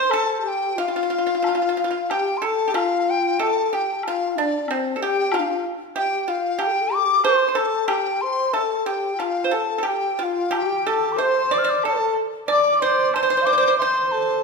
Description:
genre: chinese traditional, Chinese chamber ensemble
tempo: 92 BPM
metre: 4/4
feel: rubato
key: C zhi mode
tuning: A4 = 440 Hz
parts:
  - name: mellow hollow dizi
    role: melody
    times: 0.0-14.4 s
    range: C5 to F6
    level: -22 LUFS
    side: left 3 dB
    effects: none
  - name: low xiao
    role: second line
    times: 0.0-14.4 s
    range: C4 to F5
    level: -25 LUFS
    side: left 4 dB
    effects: none
  - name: pipa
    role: second line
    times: 0.0-14.4 s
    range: C4 to D5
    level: -25 LUFS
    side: right 6 dB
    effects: none
  - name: woodblock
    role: percussion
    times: 0.1-13.9 s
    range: none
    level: -32 LUFS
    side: left 4 dB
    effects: none
  - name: rich horsehead fiddle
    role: second line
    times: 10.5-14.4 s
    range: G4 to D5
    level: -24 LUFS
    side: right 4 dB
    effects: none
room: wet recital hall reverb, RT60 1.7 s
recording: minimal, uncompressed stereo recording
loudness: -19 LUFS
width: side -4 dB against mid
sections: 0.1-14.4 A section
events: none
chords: none

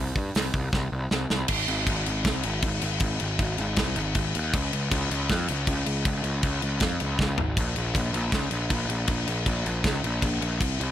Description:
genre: heavy metal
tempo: 158 BPM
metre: 4/4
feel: straight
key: unclear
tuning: A4 = 440 Hz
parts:
  - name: fuzz picked electric bass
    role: bass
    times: 0.0-10.9 s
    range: Ab1 to G2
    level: -27 LUFS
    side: equal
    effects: overdrive
  - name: tight metal drum kit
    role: drums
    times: 0.2-10.9 s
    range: crash cymbal, hi-hat, kick drum, snare drum, toms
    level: -26 LUFS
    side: equal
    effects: none
room: little or no reverb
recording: none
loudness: -24 LUFS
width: side -11 dB against mid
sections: 0.0-1.5 A section; 1.5-10.9 B section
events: drum fill 0.7-1.5, 7.2-7.6; half time 1.5-10.9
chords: none

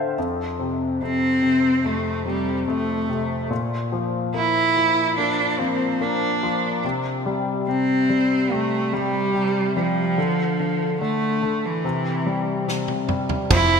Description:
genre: pop ballad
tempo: 72 BPM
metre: 4/4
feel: straight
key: unclear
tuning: A4 = 440 Hz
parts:
  - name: warm concert grand piano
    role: accompaniment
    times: 0.0-13.8 s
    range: F2 to A5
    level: -24 LUFS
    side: left 3 dB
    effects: analog chorus
  - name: rich cello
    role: melody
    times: 1.0-13.8 s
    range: E3 to E4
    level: -21 LUFS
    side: right 2 dB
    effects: none
  - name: natural country drum kit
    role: drums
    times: 12.7-13.7 s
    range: crash cymbal, kick drum, snare drum, toms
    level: -23 LUFS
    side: right 2 dB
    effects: gated reverb
  - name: fingerpicked steel-string acoustic guitar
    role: arpeggios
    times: 13.5-13.8 s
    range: F2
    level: -27 LUFS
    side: right 4 dB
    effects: none
  - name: vintage muted fingered electric bass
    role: bass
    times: 13.5-13.8 s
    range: F1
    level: -22 LUFS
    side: right 1 dB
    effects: none
room: moderate lush hall reverb, RT60 2.6 s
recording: bright 1980s-style digital production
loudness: -20 LUFS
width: side -6 dB against mid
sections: 0.0-13.5 A section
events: grand piano fill 0.0; drum fill 12.7-13.5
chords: 0.2 F; 3.5 Bb; 6.8 C5; 10.2 N.C.; 11.8 C

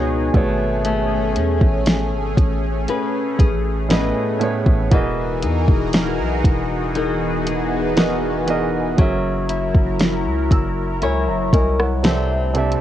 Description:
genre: contemporary R&B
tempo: 59 BPM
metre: 4/4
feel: straight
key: unclear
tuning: A4 = 435 Hz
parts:
  - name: warm grand piano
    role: accompaniment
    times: 0.0-12.8 s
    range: A2 to E6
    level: -24 LUFS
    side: right 4 dB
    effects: cassette tape
  - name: lush unison pad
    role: sustained chords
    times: 0.0-12.8 s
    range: C3 to A#4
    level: -24 LUFS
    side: equal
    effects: chorus, phaser, cassette tape
  - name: flamenco guitar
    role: arpeggios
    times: 0.0-12.8 s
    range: E3 to C#5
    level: -24 LUFS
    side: left 6 dB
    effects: cassette tape, analog delay
  - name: long sustained 808-style bass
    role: bass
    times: 0.0-12.8 s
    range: E1 to E2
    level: -23 LUFS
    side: equal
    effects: none
  - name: smooth R&B drum kit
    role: drums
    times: 0.3-12.8 s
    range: hi-hat, kick drum, rim click, snare drum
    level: -17 LUFS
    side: equal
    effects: cassette tape
room: light reverb, digital ambience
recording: home recording on cassette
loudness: -16 LUFS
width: side -12 dB against mid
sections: 0.0-12.8 A section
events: none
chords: 0.3 Amaj9; 4.9 Emaj9#11; 9.0 F#7; 12.0 C69

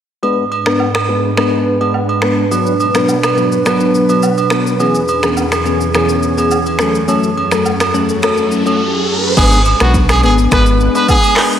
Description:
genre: afrobeats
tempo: 105 BPM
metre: 4/4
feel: straight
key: unclear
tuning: A4 = 440 Hz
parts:
  - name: bell-like tine electric piano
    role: accompaniment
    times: 0.2-11.6 s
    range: E3 to B4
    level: -16 LUFS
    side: left 3 dB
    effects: analog chorus, low-pass filter
  - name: ethereal airy pad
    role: sustained chords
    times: 0.5-11.6 s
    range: E2 to B4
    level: -17 LUFS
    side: right 1 dB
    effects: ensemble chorus, built-in reverb, low-pass filter
  - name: agogo bells and woodblock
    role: percussion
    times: 0.2-11.4 s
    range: none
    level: -19 LUFS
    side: right 5 dB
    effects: none
  - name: deep house drum kit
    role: drums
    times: 0.7-11.6 s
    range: crash cymbal, finger snaps, handclaps, hi-hat, kick drum, rim click, shaker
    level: -18 LUFS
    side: equal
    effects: none
  - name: riser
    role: sound effects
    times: 8.3-9.4 s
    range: none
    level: -20 LUFS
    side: right 2 dB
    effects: none
  - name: brilliant trumpet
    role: melody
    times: 9.4-11.5 s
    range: F#4 to B4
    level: -15 LUFS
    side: right 1 dB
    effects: analog delay
  - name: sub bass with octave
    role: bass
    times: 9.4-10.9 s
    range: G#1 to B1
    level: -13 LUFS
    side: equal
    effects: none
room: wet lush hall reverb, RT60 1.8 s, digital ambience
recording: dreamy mix soaked in reverb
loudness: -11 LUFS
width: side -9 dB against mid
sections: 0.2-9.4 A section; 9.4-11.6 B section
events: filter sweep 0.2-9.4; riser 8.3-9.4; silent gap 8.8-9.4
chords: 0.2 G#dim; 2.5 Bm; 4.8 E6; 6.8 F#m; 9.4 G#dim

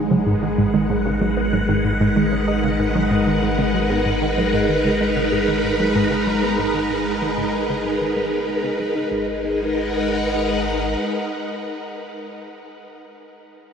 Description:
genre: ambient, sequencer-driven space music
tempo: 95 BPM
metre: 4/4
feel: straight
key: G# minor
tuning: A4 = 439 Hz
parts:
  - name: phased string machine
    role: sustained chords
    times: 0.0-12.4 s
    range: G#3 to F#5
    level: -20 LUFS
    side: equal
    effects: ensemble chorus, phaser
  - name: tight sequenced synth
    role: riff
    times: 0.0-9.4 s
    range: G#2 to D#4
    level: -25 LUFS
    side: equal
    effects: chorus, phaser, tape echo
  - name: warm sub bass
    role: bass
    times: 0.0-11.0 s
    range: G#1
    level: -29 LUFS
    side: equal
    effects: none
  - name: warbly dusty pluck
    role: arpeggios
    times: 0.1-9.4 s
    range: G#2 to G#4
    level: -26 LUFS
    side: right 2 dB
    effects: none
room: wet huge ambient reverb, RT60 7.2 s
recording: none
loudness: -18 LUFS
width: side -7 dB against mid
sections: 0.0-9.1 A section; 9.1-11.6 B section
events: fade-out on synth arpeggio sound 0.0-9.1; fade-out on sub bass 0.0-9.1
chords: 0.0 G#m7

